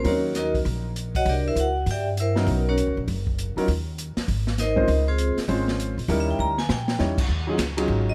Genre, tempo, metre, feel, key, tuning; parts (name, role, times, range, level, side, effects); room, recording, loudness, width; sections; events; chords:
jazz, small-group swing and bop; 199 BPM; 4/4; swing 63% on 8ths; A4 = 443 Hz
vibraphone with medium hard mallets; melody; 0.0-8.1 s; B#3 to A#5; -29 LUFS; equal
warm baby grand piano; accompaniment; 0.0-8.1 s; F#3 to C#5; -29 LUFS; equal
upright bass; bass; 0.0-8.1 s; F#1 to A#2; -28 LUFS; equal
open jazz drum kit; drums; 0.0-8.0 s; crash cymbal, hi-hat, kick drum, ride cymbal, snare drum; -32 LUFS; equal
little or no reverb; -24 LUFS; mono
0.0-7.3 A section
drum fill 6.4-7.0
0.0 D#m7; 1.3 C9; 2.5 Bmaj9; 3.7 N.C.; 4.3 G#add9; 6.1 D#7b9; 7.3 Ebm11